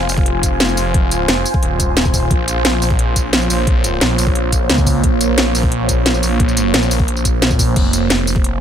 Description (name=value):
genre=dark technical drum and bass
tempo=176 BPM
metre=4/4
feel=straight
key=unclear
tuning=A4 = 440 Hz
part: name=deep dark ambient pad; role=sustained chords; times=0.0-8.6 s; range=Bb3 to Ab5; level=-20 LUFS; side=right 2 dB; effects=chorus, built-in reverb, sidechain pumping
part: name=phased detuned saw bass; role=bass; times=0.0-8.6 s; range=Eb1 to Db2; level=-18 LUFS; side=equal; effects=phaser
part: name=drum and bass drum kit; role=drums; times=0.1-8.5 s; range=crash cymbal, hi-hat, snare drum, tambourine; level=-17 LUFS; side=equal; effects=none
part: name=electronic kick drum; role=drums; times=0.2-8.4 s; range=none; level=-16 LUFS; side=equal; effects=overdrive
room=little or no reverb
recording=none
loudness=-13 LUFS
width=side -9 dB against mid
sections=0.0-8.6 A section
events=none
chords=0.0 Fm; 2.3 Bbm; 7.8 Fm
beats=0.26 0.60 | 0.94 1.28 1.63 1.97 | 2.31 2.65 2.99 3.33 | 3.67 4.01 4.35 4.69 | 5.04 5.38 5.72 6.06 | 6.40 6.74 7.08 7.42 | 7.76 8.10 8.44